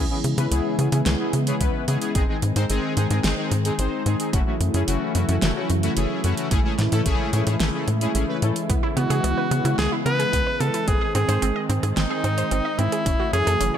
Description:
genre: synthwave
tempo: 110 BPM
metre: 4/4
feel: straight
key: C# minor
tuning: A4 = 442 Hz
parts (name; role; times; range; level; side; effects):
- warm analog pad; sustained chords; 0.0-13.8 s; C#3 to E4; -27 LUFS; left 1 dB; chorus, vintage 12-bit sampler grit, sidechain pumping
- analog synth brass; stabs; 0.0-8.5 s; G#3 to B#4; -27 LUFS; left 2 dB; chorus, cassette tape, tape echo
- tight sequencer bass; bass; 0.0-13.7 s; F#1 to C#3; -23 LUFS; equal; sidechain pumping
- pop drum kit; drums; 0.2-13.7 s; hi-hat, snare drum; -28 LUFS; right 1 dB; none
- electronic kick drum; drums; 1.6-13.2 s; none; -23 LUFS; equal; none
- wide unison pluck; arpeggios; 8.7-13.8 s; B3 to D#5; -29 LUFS; right 5 dB; tape echo
- breathy tenor saxophone; melody; 9.0-13.8 s; D#4 to B4; -24 LUFS; equal; tape echo
room: light reverb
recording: none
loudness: -20 LUFS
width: side -9 dB against mid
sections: 0.0-13.8 A section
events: none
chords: 0.0 C#m7; 2.1 G#; 4.3 F#m7; 6.5 Amaj7; 8.7 C#m7; 10.9 G#; 13.1 F#m7

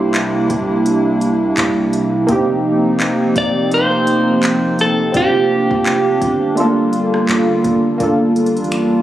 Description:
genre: contemporary R&B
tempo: 84 BPM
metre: 4/4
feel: swing 58% on 16ths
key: G minor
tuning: A4 = 438 Hz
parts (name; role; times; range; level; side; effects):
- clean electric guitar; melody; 0.0-6.5 s; G4 to D5; -18 LUFS; equal; phaser, tape echo
- warm analog keys; accompaniment; 0.0-9.0 s; A3 to A4; -16 LUFS; right 1 dB; chorus
- hollow soft pad; sustained chords; 0.0-9.0 s; C3 to G4; -18 LUFS; right 1 dB; chorus
- long sustained 808-style bass; bass; 0.0-9.0 s; F1 to C2; -26 LUFS; left 1 dB; none
- smooth R&B drum kit; drums; 0.1-8.9 s; finger snaps, handclaps, hi-hat, kick drum, rim click; -22 LUFS; equal; none
- celesta; texture; 6.6-7.7 s; C6; -28 LUFS; equal; tape echo
room: light reverb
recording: recorded on a phone in the room, club reverb, compression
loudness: -13 LUFS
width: side -12 dB against mid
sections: 0.0-8.0 A section; 8.0-9.0 B section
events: none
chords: 0.0 C9; 2.3 F7sus4; 5.1 Bb69/F; 6.6 Gm7

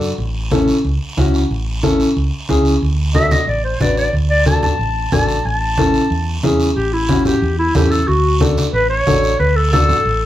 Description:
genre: latin, cumbia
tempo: 182 BPM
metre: 4/4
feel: straight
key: unclear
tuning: A4 = 440 Hz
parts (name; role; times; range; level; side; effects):
- dark upright piano; accompaniment; 0.0-10.0 s; C#4 to B4; -18 LUFS; left 2 dB; none
- hollow-body short-scale fingered electric bass; bass; 0.0-10.3 s; A1 to F#2; -18 LUFS; equal; none
- guiro; percussion; 0.0-10.3 s; none; -29 LUFS; right 3 dB; none
- congas; percussion; 0.2-10.1 s; none; -20 LUFS; equal; none
- breathy clarinet; melody; 3.1-10.3 s; E4 to A5; -17 LUFS; left 1 dB; none
room: wet small room reverb, RT60 0.5 s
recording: heard from further back in the room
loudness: -13 LUFS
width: side -13 dB against mid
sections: 0.0-2.8 A section; 2.8-10.3 B section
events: clarinet solo 2.8-10.3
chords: 0.2 A; 2.8 D; 5.5 A; 8.1 D

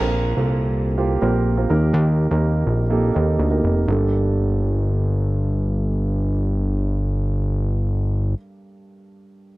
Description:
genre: pop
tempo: 124 BPM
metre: 4/4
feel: straight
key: G minor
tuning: A4 = 440 Hz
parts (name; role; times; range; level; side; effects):
- dark baby grand piano; accompaniment; 0.0-9.6 s; G2 to Bb4; -24 LUFS; right 3 dB; none
- fat analog bass; bass; 0.0-8.3 s; F1 to Eb2; -19 LUFS; equal; none
room: little or no reverb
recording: none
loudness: -18 LUFS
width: side -19 dB against mid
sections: 0.0-3.9 A section; 3.9-7.8 B section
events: none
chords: 0.0 Bbsus2; 1.7 Eb; 3.9 Gmadd9

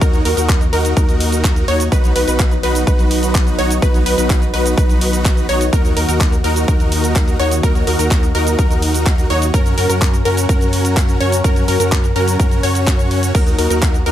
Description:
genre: EDM, festival progressive house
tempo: 126 BPM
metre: 4/4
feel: straight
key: Eb minor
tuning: A4 = 439 Hz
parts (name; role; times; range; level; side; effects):
- lush unison pad; sustained chords; 0.0-14.1 s; Eb3 to Bb4; -24 LUFS; equal; chorus, sidechain pumping
- wide unison pluck; arpeggios; 0.0-14.1 s; Bb4 to Db5; -22 LUFS; left 1 dB; sidechain pumping, digital delay
- dense compressed supersaw; riff; 0.0-14.1 s; Db4 to Db5; -20 LUFS; equal; sidechain pumping, digital delay
- saturated sub bass; bass; 0.0-14.1 s; B1 to Gb2; -19 LUFS; equal; sidechain pumping
- electronic kick drum; drums; 0.0-13.9 s; none; -14 LUFS; equal; overdrive
- house drum kit; drums; 0.0-14.1 s; crash cymbal, handclaps, hi-hat, shaker; -23 LUFS; right 1 dB; none
room: digital ambience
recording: none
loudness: -12 LUFS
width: side -12 dB against mid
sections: 0.0-14.1 A section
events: none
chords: 0.0 Ebm; 1.9 B; 5.7 Ebm; 9.5 Gb; 13.3 Ebm

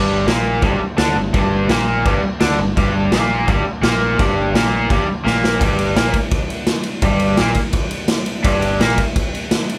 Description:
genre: garage rock duo or trio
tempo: 169 BPM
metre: 4/4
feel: straight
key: unclear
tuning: A4 = 440 Hz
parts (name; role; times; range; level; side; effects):
- raw garage guitar; riff; 0.0-9.0 s; G2 to D4; -20 LUFS; equal; overdrive
- fretless electric bass; bass; 0.0-9.0 s; G1 to D2; -26 LUFS; equal; none
- raw garage drum kit; drums; 0.3-9.8 s; crash cymbal, kick drum, ride cymbal, snare drum; -20 LUFS; equal; none
room: light reverb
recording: band playing live in one room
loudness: -17 LUFS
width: mono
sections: 0.0-5.6 A section; 5.6-9.8 B section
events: drum fill 5.2-5.6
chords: 0.0 G5; 5.6 Gm

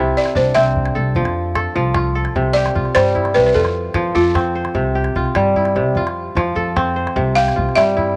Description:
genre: west african traditional, West African string and xylophone music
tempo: 100 BPM (dotted quarters)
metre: 12/8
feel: straight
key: C major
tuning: A4 = 438 Hz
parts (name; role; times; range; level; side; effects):
- kora; arpeggios; 0.0-8.2 s; C3 to C5; -21 LUFS; equal; none
- upright bass; bass; 0.0-8.2 s; C2 to G2; -24 LUFS; equal; none
- balafon; melody; 0.2-8.2 s; F4 to F5; -19 LUFS; equal; none
- calabash; percussion; 0.3-8.1 s; none; -26 LUFS; equal; none
room: moderate plate reverb, RT60 2.8 s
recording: none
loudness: -17 LUFS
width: mono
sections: 0.0-2.4 A section; 2.4-8.2 B section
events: balafon solo 0.0-2.4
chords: 0.0 C; 1.2 F; 2.4 C; 3.6 F; 4.8 C; 6.0 F; 7.2 C

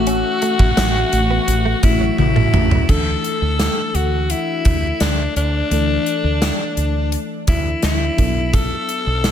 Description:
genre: 1980s-style pop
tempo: 85 BPM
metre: 4/4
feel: straight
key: unclear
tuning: A4 = 441 Hz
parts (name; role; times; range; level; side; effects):
- raspy alto saxophone; melody; 0.0-9.3 s; D4 to A4; -21 LUFS; left 3 dB; slapback echo
- FM electric piano with soft pad layer; accompaniment; 0.0-9.3 s; E3 to A4; -25 LUFS; left 2 dB; chorus, slapback echo
- warm analog pad; sustained chords; 0.0-2.9 s; A3 to C#6; -29 LUFS; equal; chorus, phaser
- woody fretless electric bass; bass; 0.0-9.3 s; A1 to D2; -20 LUFS; equal; none
- direct-recorded clean electric guitar; riff; 0.1-2.8 s; F#3 to C#4; -28 LUFS; right 4 dB; analog chorus
- gated 80s drum kit; drums; 0.1-9.3 s; crash cymbal, hi-hat, kick drum, snare drum, tambourine, toms; -19 LUFS; equal; none
- mellow synth brass; stabs; 1.1-2.8 s; C#3 to F#4; -28 LUFS; equal; none
room: light reverb, small room ambience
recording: none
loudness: -15 LUFS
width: side -9 dB against mid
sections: 0.0-2.9 A section; 2.9-9.3 B section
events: drum fill 2.2-2.9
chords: 0.0 A6; 2.9 Dsus2; 8.2 Bm7

